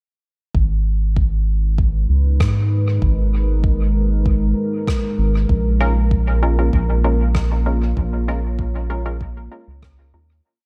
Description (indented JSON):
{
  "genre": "ambient dub",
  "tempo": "97 BPM",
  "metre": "4/4",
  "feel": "straight",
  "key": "G# dorian",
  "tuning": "A4 = 439 Hz",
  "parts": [
    { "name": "deep dark ambient pad", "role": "sustained chords", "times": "2.0-10.4 s", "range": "G#3 to C#5", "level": "-28 LUFS", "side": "equal", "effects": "chorus, built-in reverb" },
    { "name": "round analog bass", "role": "bass", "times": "0.5-10.4 s", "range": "G#1 to G#2", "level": "-20 LUFS", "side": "equal", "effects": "none" },
    { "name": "electronic kick drum", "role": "drums", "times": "0.5-10.0 s", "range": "none", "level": "-23 LUFS", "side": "equal", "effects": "none" },
    { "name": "rim click", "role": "drums", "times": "2.4-10.0 s", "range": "none", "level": "-35 LUFS", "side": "equal", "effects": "dub echo" },
    { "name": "filtered dub chord stab", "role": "stabs", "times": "5.8-10.3 s", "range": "G#3 to A#4", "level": "-28 LUFS", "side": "equal", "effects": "chorus, cassette tape, dub echo" }
  ],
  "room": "light reverb",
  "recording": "none",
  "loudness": "-18 LUFS",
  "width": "mono",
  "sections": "0.5-10.4 groove",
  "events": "fade-out 7.1-10.4",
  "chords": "0.5 G#madd9; 5.5 A#m7"
}